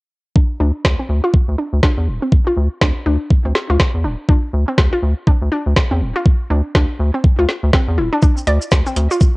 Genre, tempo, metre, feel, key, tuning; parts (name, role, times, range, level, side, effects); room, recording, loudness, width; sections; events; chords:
minimal techno; 122 BPM; 4/4; swing 60% on 16ths; D minor; A4 = 443 Hz
hollow square pluck; riff; 0.4-9.2 s; C4 to D5; -21 LUFS; equal; chorus, cassette tape, sidechain pumping, tape echo
electronic kick drum; drums; 0.4-9.3 s; -13 LUFS; equal; overdrive, cassette tape
rubbery square bass; bass; 0.6-9.1 s; D1 to E2; -16 LUFS; equal; sidechain pumping
garage drum kit; drums; 0.8-9.3 s; hi-hat, shaker, snare drum; -20 LUFS; equal; overdrive, cassette tape
digital ambience; home recording on cassette; -14 LUFS; side -24 dB against mid
0.4-9.4 A section
0.4 D5